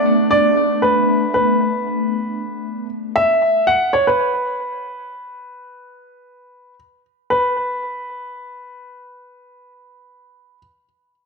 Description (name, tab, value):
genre	amapiano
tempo	free time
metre	none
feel	none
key	B minor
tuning	A4 = 440 Hz
part	warm baby grand piano	melody	0.0-10.6 s	B4 to F#5	-18 LUFS	equal	ping-pong delay
part	hollow soft pad	sustained chords	0.0-3.1 s	A3 to D4	-19 LUFS	left 1 dB	ensemble chorus
room	moderate lush hall reverb, RT60 1.6 s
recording	dark, warm production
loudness	-16 LUFS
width	side -3 dB against mid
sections	0.0-7.3 A section; 7.3-11.3 B section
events	none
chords	0.0 Bm7; 3.2 N.C.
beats	free time